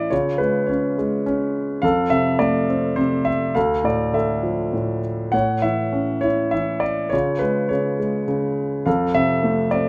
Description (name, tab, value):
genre	classical, lyrical solo piano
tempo	104 BPM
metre	3/4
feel	rubato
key	unclear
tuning	A4 = 445 Hz
part	warm concert grand piano	solo	0.0-9.9 s	D2 to F#5	-21 LUFS	equal	none
room	moderate small room ambience, RT60 0.5 s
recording	none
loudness	-21 LUFS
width	mono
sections	0.0-9.9 A section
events	none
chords	0.1 C#; 1.8 F; 3.6 Dmadd9; 5.3 A; 7.1 C#; 8.9 F